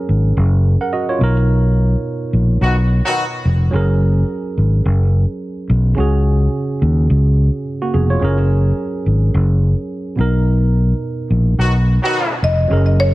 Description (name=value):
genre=afrobeats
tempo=107 BPM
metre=4/4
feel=swing 58% on 16ths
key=F# major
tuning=A4 = 440 Hz
part: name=tine electric piano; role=accompaniment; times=0.0-13.1 s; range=B2 to F#5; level=-21 LUFS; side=right 3 dB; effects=overdrive
part: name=fingered electric bass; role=bass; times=0.1-13.1 s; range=E#1 to D#2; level=-13 LUFS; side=equal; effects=none
part: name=warm horn section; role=second line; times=2.6-3.2, 11.6-12.4 s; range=D#3 to F#4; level=-20 LUFS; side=left 1 dB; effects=none
part: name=buzzing marimba with medium mallets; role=melody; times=12.4-13.1 s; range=C#5 to D#5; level=-18 LUFS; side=left 1 dB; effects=tape echo
room=light reverb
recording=echo-heavy mix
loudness=-13 LUFS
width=side -18 dB against mid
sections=0.0-12.7 A section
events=band accent 1.5-3.7, 10.5-12.7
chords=0.0 F#add9; 1.2 Bmaj7; 3.7 F#add9; 6.0 C#sus4; 8.2 F#add9; 10.2 Bmaj7